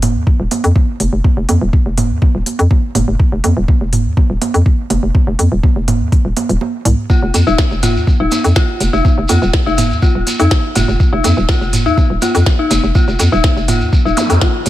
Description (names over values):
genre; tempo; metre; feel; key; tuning
minimal techno; 123 BPM; 4/4; straight; unclear; A4 = 440 Hz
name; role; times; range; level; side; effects
hollow knocking FM bass; bass; 0.0-14.7 s; Eb1 to F2; -14 LUFS; equal; sidechain pumping
minimal click drum kit; drums; 0.0-14.7 s; hi-hat, snare drum; -21 LUFS; left 1 dB; studio reverb
electronic toms and congas; percussion; 0.0-14.7 s; none; -20 LUFS; right 4 dB; overdrive, studio reverb
electronic kick drum; drums; 0.3-14.5 s; none; -12 LUFS; equal; studio reverb
dark detuned synth bell; riff; 7.1-14.4 s; Eb4 to F4; -18 LUFS; left 4 dB; chorus, sidechain pumping, dub echo
shekere; percussion; 7.1-14.7 s; none; -24 LUFS; right 1 dB; none
zap; sound effects; 14.2-14.3 s; none; -20 LUFS; equal; none
room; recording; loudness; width
digital ambience; none; -11 LUFS; side -14 dB against mid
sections
0.0-14.7 A section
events
kick drops out 6.6-7.1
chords
0.0 F5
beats
0.27 0.76 | 1.24 1.73 2.22 2.71 | 3.19 3.68 4.17 4.66 | 5.15 5.63 6.12 6.61 | 7.10 7.59 8.07 8.56 | 9.05 9.54 10.03 10.51 | 11.00 11.49 11.98 12.46 | 12.95 13.44 13.93 14.41